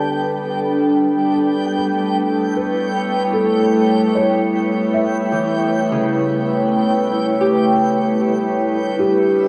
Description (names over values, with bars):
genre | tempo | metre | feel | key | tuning
ambient | 75 BPM | 4/4 | straight | unclear | A4 = 439 Hz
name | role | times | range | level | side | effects
felt-muted upright piano | melody | 0.0-9.5 s | G4 to E5 | -24 LUFS | equal | shimmer reverb, analog delay
glassy FM pad | sustained chords | 0.0-9.5 s | G3 to G5 | -19 LUFS | equal | ensemble chorus, built-in reverb, cassette tape, shimmer reverb
Celtic harp | arpeggios | 0.0-9.5 s | C#3 to A5 | -27 LUFS | equal | cassette tape, shimmer reverb, analog delay
organ-like drone | drone | 0.0-9.5 s | G3 to B3 | -30 LUFS | equal | ensemble chorus, built-in reverb, cassette tape
backwards swelling texture | texture | 0.0-9.5 s | E5 to G5 | -30 LUFS | equal | built-in reverb, cassette tape, shimmer reverb
room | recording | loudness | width
wet studio reverb, RT60 0.5 s | home recording on cassette | -18 LUFS | mono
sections
0.0-9.5 A section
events
fade-in on felt piano 0.0-9.5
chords
0.0 Gadd9; 1.8 A7; 8.2 Gadd9